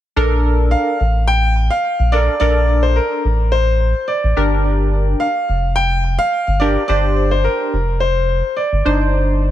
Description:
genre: pop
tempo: 107 BPM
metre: 4/4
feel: straight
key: Bb major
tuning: A4 = 440 Hz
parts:
  - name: funky polysynth comp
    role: accompaniment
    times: 0.2-9.5 s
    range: D4 to C5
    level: -20 LUFS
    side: left 1 dB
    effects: chorus
  - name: round analog bass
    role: bass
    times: 0.2-9.5 s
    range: F1 to Bb1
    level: -16 LUFS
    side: equal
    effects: none
  - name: clear grand piano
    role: melody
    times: 0.7-9.0 s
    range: Bb4 to G5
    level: -18 LUFS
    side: equal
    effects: ping-pong delay
room: small room ambience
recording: none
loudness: -14 LUFS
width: side -12 dB against mid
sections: 0.2-9.5 A section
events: none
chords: 0.2 Bbmaj7; 4.4 Gm; 8.9 Cmadd9/G

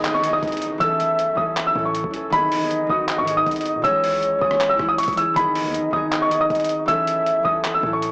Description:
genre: hip hop, trap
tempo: 158 BPM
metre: 4/4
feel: half-time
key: G# phrygian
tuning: A4 = 441 Hz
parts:
  - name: dark concert grand piano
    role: melody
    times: 0.0-8.1 s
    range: B5 to E6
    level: -21 LUFS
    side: equal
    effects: none
  - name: soft octave-layered synth lead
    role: second line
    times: 0.0-8.0 s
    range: C#5 to E5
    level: -23 LUFS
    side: equal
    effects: chorus, phaser, cassette tape, tape echo
  - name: concert harp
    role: accompaniment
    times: 0.0-8.1 s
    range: D#3 to A4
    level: -26 LUFS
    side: equal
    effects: cassette tape
  - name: long sustained 808-style bass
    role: bass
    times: 0.0-8.1 s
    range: G#1 to B2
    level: -35 LUFS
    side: equal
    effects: none
  - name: lo-fi sampler-style drum kit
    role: drums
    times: 0.0-8.1 s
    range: handclaps, hi-hat, kick drum, rim click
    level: -28 LUFS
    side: equal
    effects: overdrive, cassette tape
  - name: downlifter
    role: sound effects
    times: 0.0-2.3 s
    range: none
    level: -38 LUFS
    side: equal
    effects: none
room: moderate spring reverb, RT60 1.9 s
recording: home recording on cassette, small speaker sound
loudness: -18 LUFS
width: side -30 dB against mid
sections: 0.0-8.1 A section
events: none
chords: 0.0 G#m; 0.8 A; 2.3 G#m; 3.8 C#m; 5.4 G#m; 6.9 A

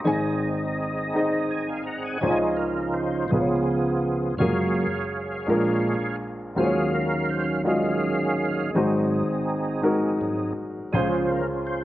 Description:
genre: slow gospel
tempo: 55 BPM (dotted quarters)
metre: 6/8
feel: straight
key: Db major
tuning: A4 = 440 Hz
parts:
  - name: dark upright piano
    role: accompaniment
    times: 0.0-11.8 s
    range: Gb1 to Eb6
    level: -24 LUFS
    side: left 1 dB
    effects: none
  - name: percussive tonewheel organ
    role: sustained chords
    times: 0.0-11.8 s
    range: Gb2 to Bb5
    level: -25 LUFS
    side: right 2 dB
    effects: slow rotary speaker, overdrive, chorus vibrato
room: moderate large studio reverb, RT60 1.4 s, studio reverb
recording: worn, warbling old tape, cassette tape, warbly pitch drift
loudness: -22 LUFS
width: side -15 dB against mid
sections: 0.0-2.2 A section; 2.2-11.8 B section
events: tonewheel organ fill 1.1-2.2; tonewheel organ solo 2.2-11.8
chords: 0.0 Ab; 2.2 Dbmaj9; 3.3 Db7; 4.4 Gbmaj9; 5.5 Bb7; 6.6 Ebm11; 8.7 Ab7; 10.9 Dbmaj7

